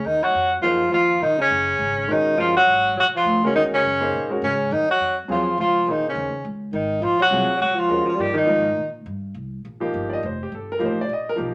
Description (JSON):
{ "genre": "modal jazz", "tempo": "206 BPM", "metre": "4/4", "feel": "swing 62% on 8ths", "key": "Eb dorian", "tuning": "A4 = 440 Hz", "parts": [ { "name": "warm tenor saxophone", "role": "melody", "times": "0.0-8.9 s", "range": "Db4 to G4", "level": "-22 LUFS", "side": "equal", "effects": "none" }, { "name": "mellow alto saxophone", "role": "second line", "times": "0.0-8.9 s", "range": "Db3 to G3", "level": "-27 LUFS", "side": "equal", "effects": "none" }, { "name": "upright bass", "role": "bass", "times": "0.0-11.5 s", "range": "F1 to Bb2", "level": "-34 LUFS", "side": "equal", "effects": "none" }, { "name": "clear concert grand piano", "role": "accompaniment", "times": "0.6-11.5 s", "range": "F3 to Eb5", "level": "-28 LUFS", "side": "equal", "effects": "none" } ], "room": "wet studio reverb, RT60 0.7 s", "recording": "none", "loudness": "-21 LUFS", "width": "mono", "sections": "0.1-9.4 A section; 9.4-11.5 B section", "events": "none", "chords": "0.1 Ebm11; 8.2 Fm11/G; 9.4 Cm7" }